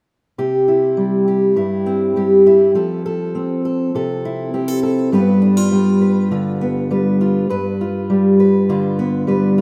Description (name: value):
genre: folk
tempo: 101 BPM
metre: 4/4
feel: straight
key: C major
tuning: A4 = 440 Hz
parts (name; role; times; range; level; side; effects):
- fingerpicked steel-string acoustic guitar; accompaniment; 0.4-9.6 s; G2 to B4; -16 LUFS; equal; none
room: moderate lush hall reverb, RT60 2.7 s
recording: rough home demo mix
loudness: -16 LUFS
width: mono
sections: 0.4-9.6 A section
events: none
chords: 0.4 C; 2.8 Fmaj7; 5.1 G7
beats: | 0.38 0.98 1.57 2.16 | 2.76 3.35 3.94 4.53 | 5.13 5.72 6.31 6.90 | 7.50 8.09 8.68 9.27